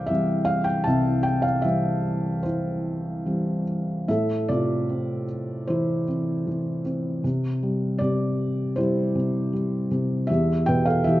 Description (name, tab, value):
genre	classical, lyrical solo piano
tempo	76 BPM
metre	4/4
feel	uneven beats, rubato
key	C major, A minor from 4.1 s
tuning	A4 = 440 Hz
part	felt-muted upright piano	solo	0.0-11.2 s	C2 to A5	-22 LUFS	equal	none
room	light reverb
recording	nothing above 7.8 kHz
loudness	-22 LUFS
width	side -15 dB against mid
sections	0.0-4.1 A section; 4.1-11.2 B section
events	none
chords	0.0 C; 4.1 Am; 7.2 C; 10.3 Em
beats	0.10 | 0.87 1.65 2.44 3.26 | 4.09 4.90 5.69 6.47 | 7.24 8.00 8.77 9.53 | 10.29 11.06